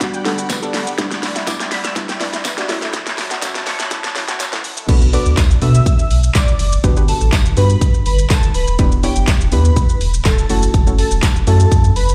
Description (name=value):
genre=dance-pop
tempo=123 BPM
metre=4/4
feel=straight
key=B minor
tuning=A4 = 439 Hz
part: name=soft round pluck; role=accompaniment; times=0.0-12.1 s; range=F#3 to C#5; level=-26 LUFS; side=equal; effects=chorus, sidechain pumping
part: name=ethereal airy pad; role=sustained chords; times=0.0-4.9 s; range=G3 to B5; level=-32 LUFS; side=equal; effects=ensemble chorus, built-in reverb, sidechain pumping
part: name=warm sub bass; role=bass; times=0.0-12.1 s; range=D1 to B2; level=-16 LUFS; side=equal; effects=sidechain pumping
part: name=pop drum kit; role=drums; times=0.0-12.1 s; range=crash cymbal, handclaps, hi-hat, kick drum, shaker, snare drum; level=-19 LUFS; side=equal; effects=none
part: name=analog pluck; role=arpeggios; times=0.1-4.9 s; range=D3 to F#6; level=-31 LUFS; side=equal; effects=chorus, sidechain pumping, delay
part: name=tambourine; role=percussion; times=0.5-11.3 s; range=none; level=-32 LUFS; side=equal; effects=none
part: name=airy dreamy lead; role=melody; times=5.1-12.1 s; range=G4 to E5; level=-26 LUFS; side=equal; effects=chorus, sidechain pumping, delay
room=little or no reverb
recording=played on a big sound system in a bare room, large studio reverb, high-pass filter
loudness=-16 LUFS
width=mono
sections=0.0-4.9 A section; 4.9-12.1 B section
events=build-up 0.0-4.9; drum fill 0.0-4.9; filter sweep 0.0-4.9; drop 4.9-12.1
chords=0.0 Gmaj7; 1.0 Em7; 2.7 F#m7; 4.9 Bm7; 6.8 Gmaj7; 8.8 Em7; 10.5 F#m7